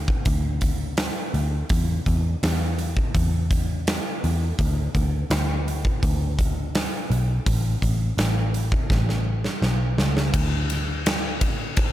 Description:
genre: rock, shoegaze and dream pop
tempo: 83 BPM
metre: 4/4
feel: straight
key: unclear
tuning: A4 = 440 Hz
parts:
  - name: vintage muted picked electric bass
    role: bass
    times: 0.0-11.4 s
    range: A1 to E2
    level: -23 LUFS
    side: equal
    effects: none
  - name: huge arena drum kit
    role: drums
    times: 0.1-11.9 s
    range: hi-hat, kick drum, ride cymbal, snare drum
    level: -24 LUFS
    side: equal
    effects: none
room: little or no reverb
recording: none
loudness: -21 LUFS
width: side -14 dB against mid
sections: 0.0-10.3 A section; 10.3-11.9 B section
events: drum fill 8.9-10.3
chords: none

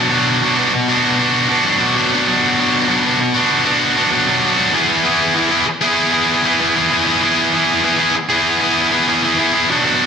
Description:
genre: rock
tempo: 97 BPM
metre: 4/4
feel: straight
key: unclear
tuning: A4 = 440 Hz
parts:
  - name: scooped high-gain guitar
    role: solo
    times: 0.0-10.1 s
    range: B2 to G#4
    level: -12 LUFS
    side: equal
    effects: distortion, slapback echo
room: wet recital hall reverb, RT60 1.6 s, digital ambience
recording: big arena sound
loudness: -12 LUFS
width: side -6 dB against mid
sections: 0.0-9.7 A section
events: none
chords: 0.0 Bm; 4.7 E

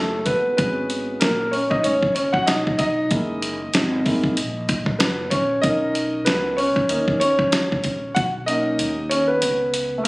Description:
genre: hip hop, jazz-hop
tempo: 95 BPM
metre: 4/4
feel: swing 57% on 16ths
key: B major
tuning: A4 = 440 Hz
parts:
  - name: warm grand piano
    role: accompaniment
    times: 0.0-10.1 s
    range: G3 to F#5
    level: -20 LUFS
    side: equal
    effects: none
  - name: upright bass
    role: bass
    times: 0.0-10.0 s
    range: F#1 to D#2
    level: -29 LUFS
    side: equal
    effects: none
  - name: dusty soul sampler-style drum kit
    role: drums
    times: 0.3-10.1 s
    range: hi-hat, kick drum, snare drum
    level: -23 LUFS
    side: equal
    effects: none
room: light reverb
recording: recorded on a phone in the room, studio reverb, compression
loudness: -18 LUFS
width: side -24 dB against mid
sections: 0.0-10.1 A section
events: grand piano solo 0.0-10.1; drum fill 8.2-10.1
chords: 0.0 A13; 0.6 G#m11; 3.1 F#13; 5.6 Bmaj9

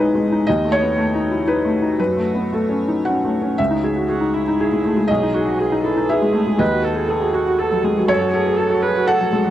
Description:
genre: neoclassical piano and strings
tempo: 120 BPM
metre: 3/4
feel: rubato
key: C# minor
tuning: A4 = 440 Hz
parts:
  - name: felt-muted upright piano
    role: accompaniment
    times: 0.0-9.5 s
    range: B1 to F#5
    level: -17 LUFS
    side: left 1 dB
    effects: none
  - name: evolving wavetable pad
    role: sustained chords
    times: 0.0-9.5 s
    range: G#3 to F#5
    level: -28 LUFS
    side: equal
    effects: chorus, built-in reverb, phaser
  - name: muted viola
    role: accompaniment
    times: 4.1-9.5 s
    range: E4 to B4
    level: -22 LUFS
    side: right 6 dB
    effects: none
room: small room ambience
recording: dry, close 1970s-style studio recording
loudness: -16 LUFS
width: side -12 dB against mid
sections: 0.0-3.6 A section; 3.6-9.5 B section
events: none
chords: 0.5 D#dim; 2.0 F#m; 3.6 C#madd9; 5.1 G#m/B; 6.6 D#dim; 8.1 F#m

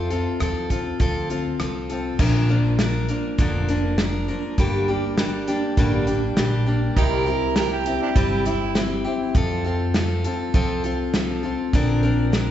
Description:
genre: honky-tonk and classic country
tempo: 101 BPM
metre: 4/4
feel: straight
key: Bb major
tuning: A4 = 441 Hz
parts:
  - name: picked steel-string acoustic guitar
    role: accompaniment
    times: 0.0-12.5 s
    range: G2 to Bb4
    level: -23 LUFS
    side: left 2 dB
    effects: none
  - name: upright bass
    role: bass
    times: 0.0-12.5 s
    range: F1 to F2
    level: -25 LUFS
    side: equal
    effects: none
  - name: natural country drum kit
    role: drums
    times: 0.1-12.5 s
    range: crash cymbal, hi-hat, kick drum, rim click, snare drum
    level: -24 LUFS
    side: right 1 dB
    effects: none
  - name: overdriven harmonica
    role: second line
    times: 7.0-8.8 s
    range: D4 to Bb4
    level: -25 LUFS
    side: right 8 dB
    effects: none
room: wet concert hall reverb, RT60 1.9 s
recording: recorded in a church or concert hall, nothing above 7.9 kHz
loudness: -19 LUFS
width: side -11 dB against mid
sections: 0.0-2.2 A section; 2.2-12.5 B section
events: none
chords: 0.0 F; 2.2 Bb; 4.6 Gm; 7.0 C; 9.4 F; 11.7 Bbadd9

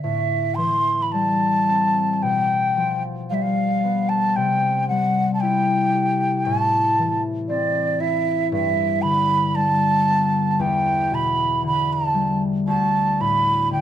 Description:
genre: celtic folk, Celtic slow air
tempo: 57 BPM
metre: 4/4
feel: rubato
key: unclear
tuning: A4 = 440 Hz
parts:
  - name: breathy mellow wooden flute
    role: melody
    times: 0.0-13.8 s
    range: D5 to C6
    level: -20 LUFS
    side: right 2 dB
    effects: none
  - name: concert harp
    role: accompaniment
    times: 0.0-13.8 s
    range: D2 to G4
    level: -22 LUFS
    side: left 3 dB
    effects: none
room: light reverb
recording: close, detailed microphones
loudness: -18 LUFS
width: side -10 dB against mid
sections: 0.0-13.8 A section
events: none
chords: 0.0 Am7; 2.2 G7/B; 4.4 C; 6.4 Am; 8.5 Gadd9; 10.6 Em7; 12.7 D5

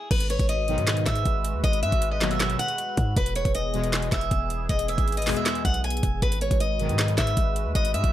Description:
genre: hip hop, trap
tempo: 157 BPM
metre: 4/4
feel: half-time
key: G# minor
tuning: A4 = 440 Hz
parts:
  - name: picked steel-string acoustic guitar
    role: melody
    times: 0.0-8.1 s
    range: B4 to G#5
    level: -28 LUFS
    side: left 1 dB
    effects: low-pass filter
  - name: sweeping resonant pad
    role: sustained chords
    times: 0.1-8.1 s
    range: E3 to B4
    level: -35 LUFS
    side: right 1 dB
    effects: wide subtle chorus
  - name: hard-hitting 808-style bass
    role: bass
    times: 0.1-8.1 s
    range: E1 to G#2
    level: -27 LUFS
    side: equal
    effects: none
  - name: trap drum kit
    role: drums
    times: 0.1-8.1 s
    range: crash cymbal, handclaps, hi-hat, kick drum, snare drum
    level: -26 LUFS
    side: equal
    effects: none
  - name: analog synth brass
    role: stabs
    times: 0.7-7.2 s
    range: B1 to G#3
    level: -29 LUFS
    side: equal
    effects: chorus
room: digital ambience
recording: none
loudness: -22 LUFS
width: side -12 dB against mid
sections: 0.1-8.1 A section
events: none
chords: 0.1 G#m7; 3.2 E; 6.2 G#m7

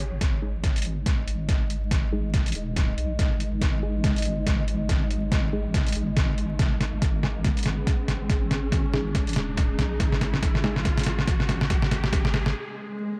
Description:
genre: deep dubstep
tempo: 141 BPM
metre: 4/4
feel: swing 58% on 16ths, half-time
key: unclear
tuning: A4 = 440 Hz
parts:
  - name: granular cloud pad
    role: sustained chords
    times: 0.0-12.5 s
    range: G#3 to D#5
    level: -36 LUFS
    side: equal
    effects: built-in reverb
  - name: deep soft wobble bass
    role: bass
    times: 0.0-12.5 s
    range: D#1 to B1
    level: -31 LUFS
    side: equal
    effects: chorus
  - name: trip hop sampler-style drum kit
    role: drums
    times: 0.0-12.5 s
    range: hi-hat, snare drum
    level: -30 LUFS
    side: equal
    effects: none
  - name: riser and swell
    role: sound effects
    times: 0.0-13.2 s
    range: none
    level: -40 LUFS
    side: equal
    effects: none
  - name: electronic kick drum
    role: drums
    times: 0.2-12.2 s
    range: none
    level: -27 LUFS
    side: equal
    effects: none
  - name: filtered dub chord stab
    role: stabs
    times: 0.4-10.8 s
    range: G#3 to G#4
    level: -37 LUFS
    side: equal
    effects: analog chorus, dub echo
room: light reverb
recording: vinyl crackle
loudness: -25 LUFS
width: mono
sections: 0.0-13.2 A section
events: build-up 0.0-13.2; drum fill 0.0-12.6; riser 0.0-12.6; filter sweep on synth stab 0.0-13.2; filter sweep on ambient pad 0.0-13.2; break 12.6-13.2; swell 12.6-13.2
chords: 0.0 G#5

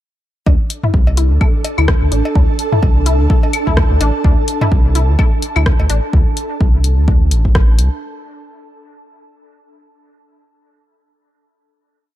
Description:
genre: minimal techno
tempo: 127 BPM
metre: 4/4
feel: swing 57% on 16ths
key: unclear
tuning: A4 = 440 Hz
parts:
  - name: resonant blip pluck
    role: riff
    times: 0.5-5.9 s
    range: D4 to A4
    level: -25 LUFS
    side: left 3 dB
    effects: chorus, phaser, cassette tape, sidechain pumping, dub echo
  - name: round analog bass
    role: bass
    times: 0.5-7.9 s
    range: A1 to D2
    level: -14 LUFS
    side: equal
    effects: sidechain pumping
  - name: electronic kick drum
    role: drums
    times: 0.5-7.7 s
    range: none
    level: -13 LUFS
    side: equal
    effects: none
  - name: electronic cowbell, toms and claves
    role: percussion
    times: 0.5-5.9 s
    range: none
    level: -21 LUFS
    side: left 2 dB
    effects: none
  - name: ethereal airy pad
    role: texture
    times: 1.2-6.1 s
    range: D4 to A5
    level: -22 LUFS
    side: right 2 dB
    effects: ensemble chorus, built-in reverb, sidechain pumping
  - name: punchy analog drum machine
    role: drums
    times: 0.7-7.9 s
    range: hi-hat, rim click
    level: -22 LUFS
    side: left 2 dB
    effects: none
room: little or no reverb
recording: dark, warm production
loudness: -11 LUFS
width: side -13 dB against mid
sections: 0.5-8.0 groove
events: none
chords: 0.5 D5

